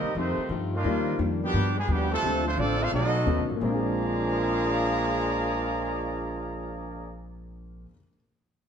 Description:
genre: jazz.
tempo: 173 BPM.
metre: 4/4.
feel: swing 64% on 8ths.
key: Bb mixolydian.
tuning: A4 = 436 Hz.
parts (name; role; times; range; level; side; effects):
bright trumpet section; melody; 0.0-7.2 s; A3 to Bb5; -30 LUFS; equal; none.
clear trombone section; second line; 0.0-7.1 s; Bb2 to F4; -30 LUFS; right 2 dB; none.
vintage hollow-body jazz guitar; accompaniment; 0.0-7.9 s; G2 to G4; -34 LUFS; left 3 dB; none.
bright saxophone section; sustained chords; 0.0-0.8 s; Eb3 to F4; -41 LUFS; left 2 dB; none.
upright bass; bass; 0.0-7.8 s; A1 to G2; -31 LUFS; equal; none.
warm upright piano; accompaniment; 0.8-8.1 s; Bb2 to C7; -33 LUFS; left 4 dB; none.
room: wet large studio reverb, RT60 1.2 s.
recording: dark, warm production.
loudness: -24 LUFS.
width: side -7 dB against mid.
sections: 0.8-3.6 A section; 3.6-6.4 B section.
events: none.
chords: 0.2 F9; 0.8 Ebmaj7; 1.5 G7; 2.2 Dm7; 2.9 B7; 3.6 Bb9.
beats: 0.16 0.50 | 0.85 1.20 1.54 1.89 | 2.23 2.58 2.92 3.27 | 3.62 3.96 4.31 4.66 | 5.00 5.35 5.69 6.04.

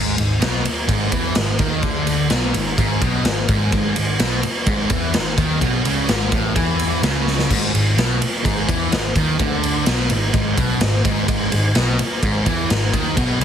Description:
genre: hard rock.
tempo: 127 BPM.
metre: 4/4.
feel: straight.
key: G# minor.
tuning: A4 = 440 Hz.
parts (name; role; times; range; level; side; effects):
sludgy distorted guitar; riff; 0.0-13.4 s; G#2 to E3; -21 LUFS; equal; overdrive.
vintage muted picked electric bass; bass; 0.0-13.4 s; G#1 to E2; -23 LUFS; equal; none.
raw garage drum kit; drums; 0.2-13.4 s; crash cymbal, kick drum, ride cymbal, snare drum; -20 LUFS; equal; none.
room: light reverb, small room ambience.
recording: heavily compressed radio sound, multiband compression.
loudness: -16 LUFS.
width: side -8 dB against mid.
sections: 0.0-7.5 A section; 7.5-13.4 A section.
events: drum fill 7.3.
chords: 0.0 G#m.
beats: 0.41 0.89 1.36 | 1.83 2.31 2.78 3.25 | 3.72 4.20 4.67 5.14 | 5.61 6.09 6.56 7.03 | 7.50 7.98 8.45 8.92 | 9.39 9.87 10.34 10.81 | 11.29 11.76 12.23 12.70 | 13.17.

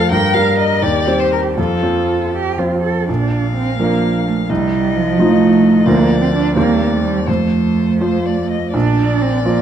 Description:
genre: quick classical-period movement for piano trio.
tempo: 79-88 BPM (dotted quarters).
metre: 6/8.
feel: rubato.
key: Bb major.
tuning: A4 = 440 Hz.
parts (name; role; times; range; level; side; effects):
rich violin; melody; 0.0-9.6 s; A4 to G5; -22 LUFS; left 8 dB; none.
warm cello; second line; 0.0-9.6 s; F3 to Bb4; -17 LUFS; right 4 dB; none.
clear baby grand piano; accompaniment; 0.0-9.6 s; Bb1 to D5; -16 LUFS; equal; none.
room: wet recital hall reverb, RT60 1.6 s.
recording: dark, warm production.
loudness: -13 LUFS.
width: side -9 dB against mid.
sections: 0.0-3.1 A section; 3.1-9.6 B section.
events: none.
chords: 0.1 Gm; 0.8 Cm/Eb; 1.6 F; 3.1 Bb; 4.5 F7/C; 5.9 Bb/D; 6.6 Cm7/Eb; 7.3 F; 8.7 Bb.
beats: | 0.11 0.82 | 1.57 2.33 | 3.08 3.79 | 4.50 5.18 | 5.86 6.55 | 7.27 8.01 | 8.74 9.45.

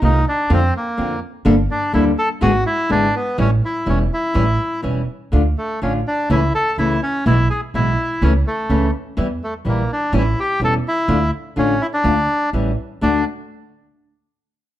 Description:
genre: tango.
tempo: 125 BPM.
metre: 4/4.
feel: rubato.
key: D harmonic minor.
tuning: A4 = 441 Hz.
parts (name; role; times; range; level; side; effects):
bandoneon; melody; 0.0-13.2 s; A3 to A4; -20 LUFS; equal; none.
flamenco guitar; accompaniment; 0.0-13.2 s; B2 to A4; -20 LUFS; left 2 dB; none.
upright bass; bass; 0.0-13.2 s; E1 to F2; -19 LUFS; right 1 dB; none.
room: light reverb.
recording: dark, warm production.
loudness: -16 LUFS.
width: side -13 dB against mid.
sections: 0.0-13.0 A section; 13.0-14.8 B section.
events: none.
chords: 0.5 Bbadd9/F; 1.5 Gmadd9; 2.4 E7/G#; 3.4 A7; 5.3 Dm; 6.3 A/C#; 7.3 E/B; 8.2 A/C#; 9.2 Edim; 10.1 A7; 11.1 Dm; 12.5 A7; 13.0 D.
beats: 0.02 0.50 0.98 | 1.45 1.93 2.41 2.89 | 3.37 3.86 4.34 4.83 | 5.32 5.81 6.29 6.78 | 7.26 7.74 8.21 8.69 | 9.17 9.65 10.13 10.60 | 11.08 11.56 12.05 12.53 | 13.02.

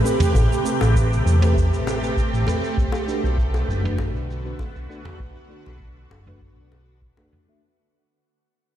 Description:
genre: sunset chillout.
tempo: 99 BPM.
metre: 4/4.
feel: straight.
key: unclear.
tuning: A4 = 445 Hz.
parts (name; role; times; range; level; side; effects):
mellow FM electric piano; accompaniment; 0.0-7.6 s; A3 to E5; -29 LUFS; equal; chorus, auto-pan, low-pass filter, tape echo.
shimmering ambient pad; sustained chords; 0.0-7.6 s; C3 to B4; -26 LUFS; right 2 dB; chorus, built-in reverb, phaser, vintage 12-bit sampler grit.
shaker and toms; drums; 0.1-7.6 s; none; -26 LUFS; right 1 dB; low-pass filter on hats, low-pass filter on toms, low-pass filter on snare, low-pass filter on perc, low-pass filter on room.
hollow-body short-scale fingered electric bass; bass; 0.3-7.3 s; F#1 to E2; -21 LUFS; equal; none.
electronic kick drum; drums; 0.3-7.1 s; none; -23 LUFS; equal; none.
bongos; percussion; 0.3-7.3 s; none; -34 LUFS; left 4 dB; none.
room: light reverb, small room ambience.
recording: played on a big sound system in a bare room, stone room reverb.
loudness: -18 LUFS.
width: side -11 dB against mid.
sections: 0.0-7.6 A section.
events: fade-out 0.0-7.6; filter sweep on drum 0.0-7.6; filter sweep on FM electric piano 0.0-7.6.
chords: 0.0 Am9; 2.8 Bm7.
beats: | 0.35 0.95 1.56 2.17 | 2.77 3.38 3.98 4.59 | 5.20 5.80 6.41 7.01.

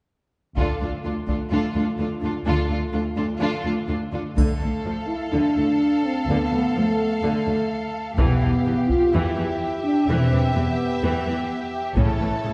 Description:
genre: cinematic, epic orchestral film score.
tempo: 126 BPM.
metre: 4/4.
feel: straight.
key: unclear.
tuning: A4 = 440 Hz.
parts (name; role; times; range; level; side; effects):
warm symphonic violin section; melody; 0.6-12.5 s; A4 to F5; -37 LUFS; equal; none.
warm symphonic violin section; second line; 0.6-12.5 s; F4 to A4; -33 LUFS; equal; none.
warm symphonic viola section; accompaniment; 0.6-12.5 s; C#3 to D4; -32 LUFS; equal; none.
mellow French horn section; sustained chords; 0.6-12.5 s; A3 to F4; -27 LUFS; equal; none.
dark symphonic cello section; bass; 0.6-12.5 s; D2 to A2; -30 LUFS; equal; none.
warm symphonic double bass section; bass; 0.6-12.2 s; E1 to D2; -29 LUFS; equal; none.
solo taiko drums; drums; 0.6-1.5, 4.4-5.3, 8.2-9.1, 12.0-12.5 s; none; -28 LUFS; equal; none.
triangle; percussion; 4.4-5.3 s; none; -50 LUFS; equal; none.
room: wet scoring stage reverb, RT60 1.6 s.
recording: heard from further back in the room, nothing above 10.3 kHz.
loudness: -23 LUFS.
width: mono.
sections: 0.6-4.4 A section; 4.4-12.5 B section.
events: none.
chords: 0.6 Dm; 8.2 Em; 12.0 A.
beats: | 0.57 1.05 1.52 1.99 | 2.46 2.94 3.41 3.89 | 4.38 4.85 5.33 5.81 | 6.28 6.76 7.23 7.71 | 8.18 8.66 9.14 9.61 | 10.08 10.55 11.02 11.49 | 11.96 12.44.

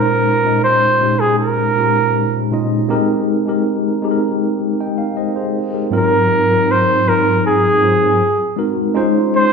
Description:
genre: soul.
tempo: 79 BPM.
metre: 4/4.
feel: straight.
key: Ab major.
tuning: A4 = 440 Hz.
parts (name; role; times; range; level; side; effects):
warm flugelhorn; melody; 0.0-9.5 s; Ab4 to C5; -14 LUFS; right 1 dB; none.
mellow tine electric piano; accompaniment; 0.0-9.5 s; Ab2 to G5; -16 LUFS; equal; medium stereo tremolo.
room: wet large studio reverb, RT60 1.3 s.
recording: band playing live in one room.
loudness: -13 LUFS.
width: side -5 dB against mid.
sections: 0.0-9.0 A section.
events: none.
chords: 0.0 Bbm11; 2.9 Abmaj9; 5.9 Ab13; 8.2 Ab9; 9.0 Dbmaj9.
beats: 0.65 1.40 2.16 | 2.91 3.67 4.43 5.18 | 5.94 6.69 7.45 8.20 | 8.96.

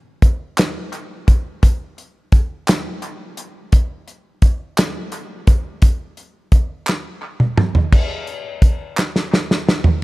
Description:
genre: gospel.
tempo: 57 BPM (dotted quarters).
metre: 6/8.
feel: straight.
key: none.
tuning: none.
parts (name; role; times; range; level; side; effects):
warm soul drum kit; drums; 0.2-10.0 s; crash cymbal, hi-hat, kick drum, snare drum, toms; -14 LUFS; equal; none.
group handclap; percussion; 0.6-9.3 s; none; -27 LUFS; right 2 dB; analog delay.
room: little or no reverb.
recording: echo-heavy mix.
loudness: -15 LUFS.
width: side -20 dB against mid.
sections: 0.0-7.9 A section; 7.9-10.0 B section.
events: drum fill 6.9-7.9, 9.0-10.0.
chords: none.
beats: 0.58 | 1.63 2.68 | 3.73 4.78 | 5.83 6.88 | 7.93 8.98.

